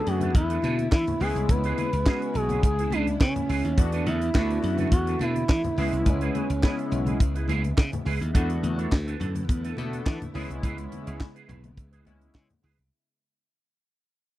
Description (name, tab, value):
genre	early-eighties boogie funk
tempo	105 BPM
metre	4/4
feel	straight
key	unclear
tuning	A4 = 441 Hz
part	expressive portamento lead	melody	0.0-7.8 s	C#4 to B4	-29 LUFS	equal	chorus
part	chorused polysynth	accompaniment	0.0-12.5 s	G#3 to A4	-32 LUFS	left 2 dB	none
part	soft string machine	sustained chords	0.0-12.9 s	C#3 to E4	-37 LUFS	equal	ensemble chorus
part	electric guitar with an envelope filter	riff	0.1-12.8 s	D4 to C#5	-35 LUFS	right 7 dB	ensemble chorus
part	glassy slap bass	bass	0.1-12.9 s	B1 to E3	-28 LUFS	equal	none
part	tight funk drum kit	drums	0.1-12.9 s	handclaps, hi-hat, kick drum, snare drum	-22 LUFS	equal	none
part	congas	percussion	0.2-12.8 s	none	-35 LUFS	left 3 dB	none
room	little or no reverb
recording	dry, close 1970s-style studio recording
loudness	-23 LUFS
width	side -15 dB against mid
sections	0.0-8.3 A section; 8.3-12.9 B section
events	fade-out 8.3-12.9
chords	0.0 E7sus4; 1.2 C#m7; 3.8 E7sus4; 5.8 C#m7; 8.3 E7sus4; 10.3 C#m7